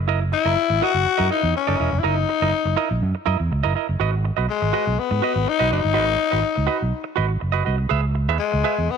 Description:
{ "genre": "disco", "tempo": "123 BPM", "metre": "4/4", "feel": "straight", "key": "G# minor", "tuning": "A4 = 444 Hz", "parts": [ { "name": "fingered electric bass", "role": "bass", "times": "0.0-8.9 s", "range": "E1 to G#2", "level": "-22 LUFS", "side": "right 2 dB", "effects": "none" }, { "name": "semi-hollow electric guitar", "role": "accompaniment", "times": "0.1-8.8 s", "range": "E4 to E5", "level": "-25 LUFS", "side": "right 14 dB", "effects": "none" }, { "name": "growling tenor saxophone", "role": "melody", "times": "0.3-9.0 s", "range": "G#3 to F#4", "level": "-21 LUFS", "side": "left 9 dB", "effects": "none" } ], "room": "light reverb, small room ambience", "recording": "1960s-style stereo with parts hard left and right", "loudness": "-18 LUFS", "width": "side -6 dB against mid", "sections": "0.0-4.0 A section; 4.0-9.0 B section", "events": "none", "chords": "0.0 F#13; 4.0 G#m7; 7.9 C#m7" }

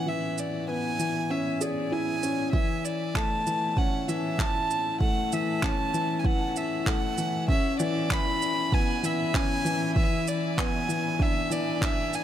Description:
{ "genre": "piano and strings electronica", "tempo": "97 BPM", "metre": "4/4", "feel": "straight", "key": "F# minor", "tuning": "A4 = 440 Hz", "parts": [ { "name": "warm violin", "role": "melody", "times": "0.0-12.2 s", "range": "D5 to B5", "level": "-30 LUFS", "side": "right 1 dB", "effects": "none" }, { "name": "dark upright piano", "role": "riff", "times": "0.0-12.2 s", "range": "E3 to G#4", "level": "-28 LUFS", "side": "left 2 dB", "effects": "ping-pong delay" }, { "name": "electronic shaker and handclaps", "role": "drums", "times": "0.4-12.2 s", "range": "none", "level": "-36 LUFS", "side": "right 2 dB", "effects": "overdrive, high-pass filter on perc, high-pass filter on snare, high-pass filter on room" }, { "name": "electronic kick drum", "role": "drums", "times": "2.5-11.9 s", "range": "none", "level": "-27 LUFS", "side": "right 1 dB", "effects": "overdrive" } ], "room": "moderate huge ambient reverb, RT60 7.9 s", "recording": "none", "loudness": "-24 LUFS", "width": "side -10 dB against mid", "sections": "0.0-12.2 A section", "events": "build-up 0.0-12.2", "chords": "0.0 C#m7; 2.5 F#m7; 7.5 C#m7; 10.0 E7" }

